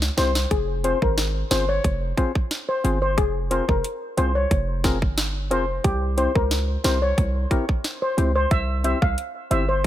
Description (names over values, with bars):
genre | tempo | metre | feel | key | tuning
dancehall | 90 BPM | 4/4 | straight | F harmonic minor | A4 = 441 Hz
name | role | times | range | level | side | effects
hard-hitting 808-style bass | bass | 0.0-9.9 s | F1 to Db2 | -24 LUFS | equal | none
island pop drum kit | drums | 0.0-9.9 s | hi-hat, kick drum, snare drum | -24 LUFS | equal | overdrive
steel pan | melody | 0.2-9.8 s | G4 to F5 | -25 LUFS | left 1 dB | tape echo
percussive organ stab | accompaniment | 0.2-9.7 s | C4 to C5 | -28 LUFS | left 3 dB | chorus
room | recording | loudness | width
little or no reverb | none | -20 LUFS | side -12 dB against mid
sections
0.0-9.9 A section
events
drum fill 0.0-0.5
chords
0.0 C; 0.5 Fm; 5.8 C